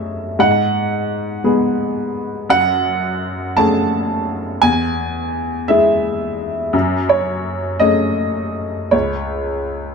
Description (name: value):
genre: neoclassical minimalist piano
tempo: 57 BPM (dotted quarters)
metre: 6/8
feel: rubato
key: F# dorian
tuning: A4 = 439 Hz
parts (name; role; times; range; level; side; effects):
- warm upright piano; solo; 0.0-9.9 s; C#2 to A5; -16 LUFS; equal; slapback echo
room: moderate small room reverb, RT60 0.5 s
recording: none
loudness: -16 LUFS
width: side -5 dB against mid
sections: 0.0-9.9 A section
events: none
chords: 0.4 G#m7; 2.5 F#madd9; 4.6 E; 6.7 F#madd9; 8.9 N.C.